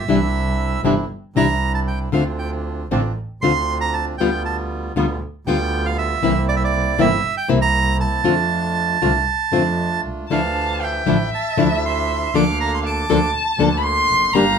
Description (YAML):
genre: tango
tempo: 118 BPM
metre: 4/4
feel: rubato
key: unclear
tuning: A4 = 440 Hz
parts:
  - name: bandoneon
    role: melody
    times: 0.0-14.6 s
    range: D5 to D6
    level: -22 LUFS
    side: right 6 dB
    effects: none
  - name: bandoneon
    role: stabs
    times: 0.0-14.6 s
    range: E3 to A4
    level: -27 LUFS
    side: right 4 dB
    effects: none
  - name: clear double bass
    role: bass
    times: 0.0-14.6 s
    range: F1 to F2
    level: -24 LUFS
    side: right 1 dB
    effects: none
  - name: nylon-string guitar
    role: accompaniment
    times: 0.1-14.4 s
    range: C3 to A4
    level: -18 LUFS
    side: left 4 dB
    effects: none
  - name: warm violin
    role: second line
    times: 10.3-14.6 s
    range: E5 to C6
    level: -20 LUFS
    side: left 1 dB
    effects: none
room: moderate studio ambience, RT60 0.5 s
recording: band playing live in one room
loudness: -17 LUFS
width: side -7 dB against mid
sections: 0.0-14.6 A section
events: none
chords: 0.1 Cadd9; 2.1 Dm7; 4.2 G7/D; 6.2 C7; 8.3 F6; 10.3 Dmadd9; 12.3 Bbmaj7/D